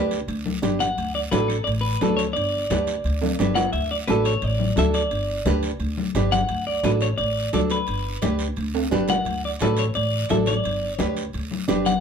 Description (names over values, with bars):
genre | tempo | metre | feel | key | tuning
latin, cumbia | 174 BPM | 4/4 | straight | D major | A4 = 440 Hz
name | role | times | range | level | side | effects
clean electric guitar | melody | 0.0-12.0 s | A4 to F#5 | -25 LUFS | left 1 dB | spring reverb
nylon-string guitar | accompaniment | 0.0-11.9 s | D4 to B4 | -24 LUFS | right 4 dB | none
upright bass | bass | 0.0-12.0 s | G1 to D2 | -26 LUFS | equal | none
guiro | percussion | 0.1-12.0 s | none | -37 LUFS | right 5 dB | none
timbales | percussion | 0.1-12.0 s | none | -32 LUFS | right 4 dB | none
congas | percussion | 0.3-12.0 s | none | -28 LUFS | left 6 dB | none
room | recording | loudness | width
moderate small room reverb, RT60 0.5 s | minimal, uncompressed stereo recording | -20 LUFS | side -7 dB against mid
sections
0.0-3.7 A section; 3.7-12.0 A section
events
drum fill 3.2-3.7, 8.7-9.3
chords
0.0 G; 1.0 D; 2.4 G; 3.7 D; 5.1 G; 6.5 D; 7.9 G; 9.3 D; 10.6 G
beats
0.29 0.63 | 0.98 1.32 1.67 2.01 | 2.36 2.70 3.05 3.39 | 3.74 4.08 4.43 4.77 | 5.12 5.46 5.81 6.15 | 6.50 6.84 7.19 7.54 | 7.88 8.23 8.57 8.92 | 9.27 9.61 9.96 10.30 | 10.65 10.99 11.34 11.69